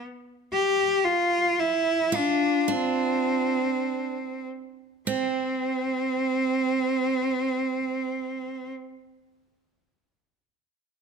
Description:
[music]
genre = folk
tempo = 48-58 BPM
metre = 4/4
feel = straight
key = unclear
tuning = A4 = 440 Hz
[part]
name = bright cello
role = melody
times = 0.5-8.7 s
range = C4 to G4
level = -24 LUFS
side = equal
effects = none
[part]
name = picked steel-string acoustic guitar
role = arpeggios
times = 2.1-8.7 s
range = C4 to F4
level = -31 LUFS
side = right 6 dB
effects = none
[sound]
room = moderate recital hall reverb, RT60 1.3 s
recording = close, detailed microphones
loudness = -23 LUFS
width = side -5 dB against mid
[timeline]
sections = 0.0-5.1 A section; 5.1-10.1 B section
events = slowing down 0.0-5.1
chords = 0.0 N.C.; 0.5 Csus4; 5.1 N.C.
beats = | 0.51 1.58 2.68 3.85 | 5.07 6.32 7.57

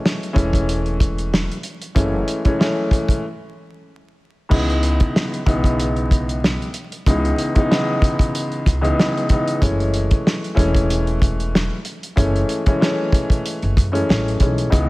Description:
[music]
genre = hip hop, boom-bap hip-hop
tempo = 94 BPM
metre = 4/4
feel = swing 55% on 16ths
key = unclear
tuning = A4 = 441 Hz
[part]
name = dark baby grand piano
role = accompaniment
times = 0.0-14.9 s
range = C#2 to D#4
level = -21 LUFS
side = left 1 dB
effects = cassette tape, high-pass filter, low-pass filter
[part]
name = warm soul drum kit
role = drums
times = 0.1-14.9 s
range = crash cymbal, hi-hat, kick drum, snare drum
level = -19 LUFS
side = equal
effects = vintage 12-bit sampler grit
[part]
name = upright bass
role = bass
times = 0.4-14.9 s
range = E1 to F#2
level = -22 LUFS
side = equal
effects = none
[sound]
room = light reverb, small room ambience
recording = vinyl crackle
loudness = -16 LUFS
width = side -20 dB against mid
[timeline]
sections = 0.0-4.5 A section; 4.5-14.9 A section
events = break 3.2-4.5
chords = 0.0 F#m9 (rootless); 4.5 C#m9; 9.6 F#m9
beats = 0.04 0.68 1.32 | 1.96 2.60 3.23 3.87 | 4.51 5.15 5.79 6.43 | 7.07 7.70 8.34 8.98 | 9.62 10.26 10.89 11.53 | 12.17 12.81 13.45 14.09 | 14.72

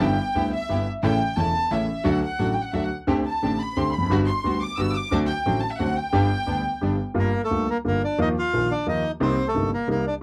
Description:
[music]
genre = tango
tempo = 176 BPM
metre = 3/4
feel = rubato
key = G major, G minor from 7.2 s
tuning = A4 = 445 Hz
[part]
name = warm chamber violin section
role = second line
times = 0.0-7.0 s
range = E5 to E6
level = -29 LUFS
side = equal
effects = none
[part]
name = warm concert grand piano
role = accompaniment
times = 0.0-10.0 s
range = E1 to G4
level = -26 LUFS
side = equal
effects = none
[part]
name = rich studio string section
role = stabs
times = 0.0-7.0 s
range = F#3 to A4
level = -34 LUFS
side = equal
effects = none
[part]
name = bandoneon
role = melody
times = 7.2-10.2 s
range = A3 to F5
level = -27 LUFS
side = equal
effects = none
[sound]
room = light reverb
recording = dry, close 1970s-style studio recording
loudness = -24 LUFS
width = mono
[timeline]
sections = 0.0-7.2 A section; 7.2-10.2 B section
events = violin section solo 0.0-7.2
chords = 0.0 G6; 1.0 A; 2.1 D; 3.1 D7sus4; 4.1 Gmaj7; 5.1 D7; 6.1 G; 7.2 Gm7; 8.2 Ebsus2; 9.2 Cm7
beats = | 0.01 0.36 0.70 | 1.04 1.37 1.71 | 2.05 2.39 2.73 | 3.08 3.42 3.77 | 4.11 4.45 4.79 | 5.12 5.46 5.80 | 6.13 6.47 6.82 | 7.16 7.51 7.85 | 8.19 8.53 8.87 | 9.21 9.55 9.88

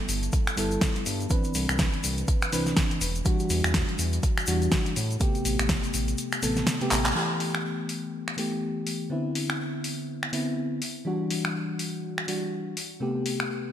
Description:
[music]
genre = deep house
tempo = 123 BPM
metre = 4/4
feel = swing 58% on 16ths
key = G major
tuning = A4 = 440 Hz
[part]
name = mellow FM electric piano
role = stabs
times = 0.0-13.7 s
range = C3 to B4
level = -29 LUFS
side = left 1 dB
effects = chorus, sidechain pumping, low-pass filter, digital delay
[part]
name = smooth synth bass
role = bass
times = 0.1-7.1 s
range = E1 to A2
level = -29 LUFS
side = equal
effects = sidechain pumping
[part]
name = deep house drum kit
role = drums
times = 0.1-13.5 s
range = finger snaps, handclaps, hi-hat, snare drum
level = -29 LUFS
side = equal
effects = none
[part]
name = tube shaker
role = percussion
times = 0.1-7.1 s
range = none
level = -36 LUFS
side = left 3 dB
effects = none
[part]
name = electronic kick drum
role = drums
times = 0.3-5.8 s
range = none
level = -27 LUFS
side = equal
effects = none
[sound]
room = light reverb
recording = bright 1980s-style digital production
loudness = -25 LUFS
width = side -10 dB against mid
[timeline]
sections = 0.0-7.2 A section; 7.2-13.7 B section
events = kick drops out 6.2-7.2; drum fill 6.9; band accent 7.0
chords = 0.0 G69; 1.3 Cmaj9; 3.0 Em9; 5.0 Am9; 7.2 G69; 9.1 Cmaj9; 10.8 Em9; 12.8 Am9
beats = 0.33 0.82 | 1.31 1.79 2.28 2.77 | 3.26 3.75 4.23 4.72 | 5.21 5.70 6.18 6.67 | 7.16 7.65 8.13 8.62 | 9.11 9.60 10.09 10.57 | 11.06 11.55 12.04 12.53 | 13.01 13.50

